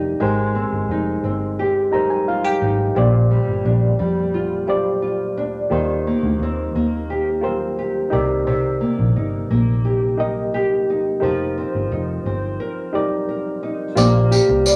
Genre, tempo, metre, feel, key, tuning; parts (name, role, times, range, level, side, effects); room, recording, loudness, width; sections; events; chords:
indie pop, bedroom pop; 87 BPM; 4/4; straight; Bb major; A4 = 441 Hz
nylon-string guitar; accompaniment; 0.0-14.8 s; Bb2 to D5; -23 LUFS; equal; vibrato effect
reed electric piano; accompaniment; 0.0-14.8 s; D4 to Bb5; -26 LUFS; equal
vintage muted fingered electric bass; bass; 0.0-14.8 s; F1 to F2; -24 LUFS; equal
tambourine; percussion; 14.0-14.8 s; -26 LUFS; equal
wet small room reverb, RT60 0.5 s; -20 LUFS; mono
0.0-14.0 A section
reed electric piano fill 1.6-3.0
0.2 Abmaj7; 3.0 Bb6; 5.7 Eb6; 8.1 Cm7; 11.2 F7sus4; 14.0 Bb6